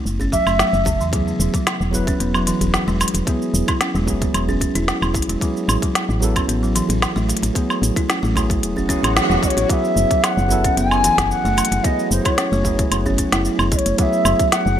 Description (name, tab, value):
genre	organic downtempo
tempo	112 BPM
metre	4/4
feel	swing 53% on 16ths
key	F# minor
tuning	A4 = 439 Hz
part	woody FM bass	bass	0.1-14.8 s	E1 to E2	-21 LUFS	equal	sidechain pumping
part	organic electronic drum kit	drums	0.1-14.8 s	hi-hat, shaker, snare drum, woodblock	-22 LUFS	equal	none
part	buzzing kalimba	arpeggios	0.2-14.8 s	C#3 to F#4	-24 LUFS	equal	ping-pong delay
part	djembe	percussion	0.2-13.8 s	none	-31 LUFS	right 1 dB	none
part	bansuri	melody	0.3-1.1, 9.4-14.8 s	C#5 to G#5	-20 LUFS	left 1 dB	ping-pong delay
part	electronic kick drum	drums	0.3-14.5 s	none	-22 LUFS	equal	none
part	tine electric piano	accompaniment	1.1-14.8 s	F#3 to B4	-24 LUFS	right 2 dB	medium stereo tremolo, sidechain pumping, ping-pong delay
part	swell	sound effects	8.8-9.7 s	none	-27 LUFS	right 1 dB	none
room	moderate lush hall reverb, RT60 1.6 s, digital ambience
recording	bright 1980s-style digital production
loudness	-16 LUFS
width	side -10 dB against mid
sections	0.0-9.7 A section; 9.7-14.8 B section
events	swell 8.8-9.7; band accent 9.2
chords	0.0 F#7(no3); 1.1 E; 5.4 Amaj7(no3); 9.7 F#m7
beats	0.06 0.59 | 1.13 1.67 2.20 2.74 | 3.27 3.81 4.34 4.88 | 5.42 5.95 6.49 7.02 | 7.56 8.09 8.63 9.17 | 9.70 10.24 10.77 11.31 | 11.84 12.38 12.92 13.45 | 13.99 14.52